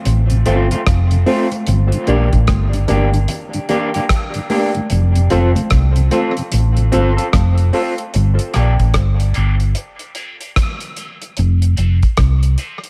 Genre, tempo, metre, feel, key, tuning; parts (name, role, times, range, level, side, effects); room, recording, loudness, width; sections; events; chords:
dub reggae; 74 BPM; 4/4; swing 62% on 16ths; G minor; A4 = 441 Hz
hollow-body short-scale fingered electric bass; bass; 0.1-12.6 s; F1 to C2; -16 LUFS; equal
cloth-damped thuddy drum kit; drums; 0.1-12.9 s; hi-hat, kick drum, rim click; -21 LUFS; equal
congas; percussion; 0.1-12.8 s; -29 LUFS; equal
mellow tonewheel organ; accompaniment; 0.3-12.9 s; F2 to G4; -28 LUFS; equal
electric guitar through a small old amp; accompaniment; 0.5-12.8 s; A3 to A4; -26 LUFS; equal; spring reverb, high-pass filter, tape echo
reed electric piano; stabs; 0.5-12.8 s; C4 to D5; -25 LUFS; equal; fast tremolo, high-pass filter, tape echo
small room ambience; echo-heavy mix; -15 LUFS; mono
0.0-12.9 A section
filter sweep 4.9-12.9
0.0 F; 1.7 Gm; 4.9 F; 8.1 Gm; 11.4 F